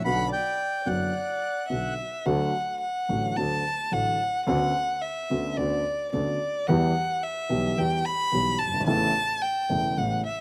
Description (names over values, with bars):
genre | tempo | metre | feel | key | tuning
tango | 109 BPM | 4/4 | rubato | D major | A4 = 438 Hz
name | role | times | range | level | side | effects
bandoneon | melody | 0.0-1.9 s | F#5 to B5 | -32 LUFS | equal | slapback echo
dark grand piano | accompaniment | 0.0-10.2 s | E1 to G4 | -30 LUFS | equal | none
clear double bass | bass | 0.0-10.2 s | E1 to E2 | -36 LUFS | equal | none
warm violin | second line | 0.1-10.4 s | D5 to B5 | -30 LUFS | equal | none
room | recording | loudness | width
little or no reverb | recorded outdoors, with no room sound | -26 LUFS | mono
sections
0.0-2.3 A section; 2.3-10.4 B section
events
violin solo 2.3-10.4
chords
0.0 Bm; 2.3 D; 4.5 Bmadd9/D; 6.7 Em; 8.9 Aadd9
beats
| 0.04 0.58 1.14 1.70 | 2.26 2.82 3.37 3.93 | 4.48 5.03 5.57 6.12 | 6.67 7.22 7.76 8.31 | 8.86 9.41 9.97